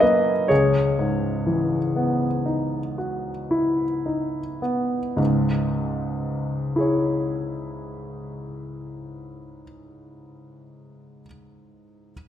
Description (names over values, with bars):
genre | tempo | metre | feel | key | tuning
classical, impressionist solo piano | 34-43 BPM (dotted quarters) | 9/8 | rubato | C# minor | A4 = 440 Hz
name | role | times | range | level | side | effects
clear grand piano | solo | 0.0-12.1 s | C#2 to F#5 | -21 LUFS | left 1 dB | none
room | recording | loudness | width
wet recital hall reverb, RT60 1.5 s | minimal, uncompressed stereo recording | -21 LUFS | side -10 dB against mid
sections
0.0-5.2 A section; 5.2-9.9 B section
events
slowing down 0.0-5.2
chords
0.5 C#m11; 5.2 C#m